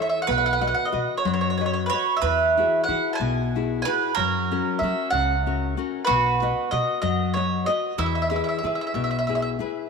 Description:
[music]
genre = italian folk, Italian serenade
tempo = 62 BPM (dotted quarters)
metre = 6/8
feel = rubato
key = E major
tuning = A4 = 437 Hz
[part]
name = mandolin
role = melody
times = 0.0-9.5 s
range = B4 to A5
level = -24 LUFS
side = right 1 dB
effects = none
[part]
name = bowl-back mandolin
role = second line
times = 0.0-9.6 s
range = E4 to C#5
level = -27 LUFS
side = right 10 dB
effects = none
[part]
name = nylon-string guitar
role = accompaniment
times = 0.0-9.9 s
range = B2 to D#5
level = -27 LUFS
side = left 11 dB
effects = none
[part]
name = upright bass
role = bass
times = 0.3-9.6 s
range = B1 to F#3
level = -29 LUFS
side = right 1 dB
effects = none
[sound]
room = moderate plate reverb, RT60 2.6 s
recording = 1960s-style stereo with parts hard left and right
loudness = -21 LUFS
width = side -5 dB against mid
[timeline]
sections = 0.0-9.9 A section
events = none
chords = 0.3 B; 2.2 Eadd9; 4.2 F#; 6.1 B; 8.0 E

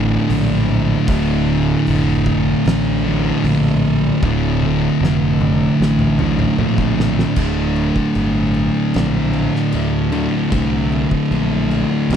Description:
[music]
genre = stoner and doom metal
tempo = 76 BPM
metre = 4/4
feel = straight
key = unclear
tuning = A4 = 440 Hz
[part]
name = thick fuzz guitar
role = riff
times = 0.0-12.2 s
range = D2 to D3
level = -18 LUFS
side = left 8 dB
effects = distortion
[part]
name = thick fuzz guitar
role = riff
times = 0.0-12.2 s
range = D2 to D3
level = -19 LUFS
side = right 9 dB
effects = distortion
[part]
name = fuzz fingered electric bass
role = bass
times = 0.0-12.2 s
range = D1 to D2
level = -21 LUFS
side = equal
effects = overdrive
[part]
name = oversized low-tuned drum kit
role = drums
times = 0.3-12.2 s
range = crash cymbal, hi-hat, kick drum, snare drum, toms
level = -24 LUFS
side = equal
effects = none
[sound]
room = little or no reverb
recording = dry, close 1970s-style studio recording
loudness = -14 LUFS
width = side -8 dB against mid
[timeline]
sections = 0.0-7.4 A section; 7.4-12.2 B section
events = drum fill 4.2-7.4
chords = 0.0 Dm; 7.4 D5

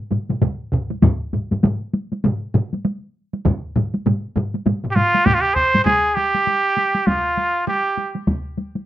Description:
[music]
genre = japanese traditional, taiko drum ensemble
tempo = 99 BPM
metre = 4/4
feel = swing 60% on 16ths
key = unclear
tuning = A4 = 440 Hz
[part]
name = taiko ensemble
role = percussion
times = 0.1-8.9 s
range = none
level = -20 LUFS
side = equal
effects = none
[part]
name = taiko ensemble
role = percussion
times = 0.1-5.9 s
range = none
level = -23 LUFS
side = left 2 dB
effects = none
[part]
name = taiko ensemble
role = percussion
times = 0.1-5.9 s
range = none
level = -26 LUFS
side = right 2 dB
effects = none
[part]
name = taiko ensemble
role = percussion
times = 0.4-8.4 s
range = none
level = -25 LUFS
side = equal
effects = none
[part]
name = trumpet with straight mute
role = melody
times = 4.9-8.1 s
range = F4 to C5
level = -16 LUFS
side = right 2 dB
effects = plate reverb
[sound]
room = moderate small room reverb, RT60 0.5 s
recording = rough home demo mix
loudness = -17 LUFS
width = side -13 dB against mid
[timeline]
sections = 0.0-5.9 A section; 5.9-8.9 B section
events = none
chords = none

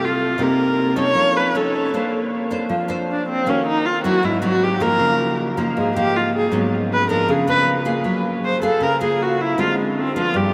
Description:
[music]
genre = bossa nova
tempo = 157 BPM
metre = 4/4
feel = straight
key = unclear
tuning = A4 = 440 Hz
[part]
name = warm viola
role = melody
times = 0.0-10.5 s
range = Ab3 to Db5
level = -22 LUFS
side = equal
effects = tape echo
[part]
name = nylon-string guitar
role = accompaniment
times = 0.0-10.5 s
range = G2 to C5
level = -23 LUFS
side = equal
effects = subtle chorus
[sound]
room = wet huge ambient reverb, RT60 8.9 s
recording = dreamy mix soaked in reverb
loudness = -19 LUFS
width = mono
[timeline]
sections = 0.0-1.9 A section; 1.9-10.5 A section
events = viola solo 0.0-10.5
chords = 0.4 Cm7; 1.2 Faug7; 1.9 Bbmaj9; 3.5 Ebm7; 4.2 Ab7b13; 5.0 Db69; 6.5 Abm7; 7.3 Db7b9; 8.0 Gbmaj9; 9.6 Dm7b5

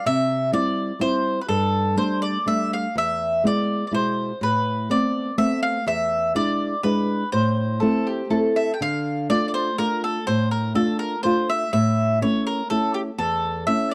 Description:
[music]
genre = italian folk, Italian serenade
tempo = 124 BPM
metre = 3/4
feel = straight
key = A minor, D minor from 8.8 s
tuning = A4 = 441 Hz
[part]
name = mandolin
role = melody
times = 0.0-13.9 s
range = G4 to G5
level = -26 LUFS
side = equal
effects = none
[part]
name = nylon-string guitar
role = accompaniment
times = 0.1-13.9 s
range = E2 to F4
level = -25 LUFS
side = equal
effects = none
[part]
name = mandolin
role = second line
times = 7.8-8.8 s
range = G4 to A4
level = -26 LUFS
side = equal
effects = none
[sound]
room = studio reverb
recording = dry, close 1970s-style studio recording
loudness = -22 LUFS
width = mono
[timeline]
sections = 0.0-8.8 A section; 8.8-13.9 B section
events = none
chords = 0.1 C; 1.5 Gsus2; 3.0 E; 4.4 Amadd9; 5.9 E7; 7.3 Am; 8.8 Dm; 11.7 A

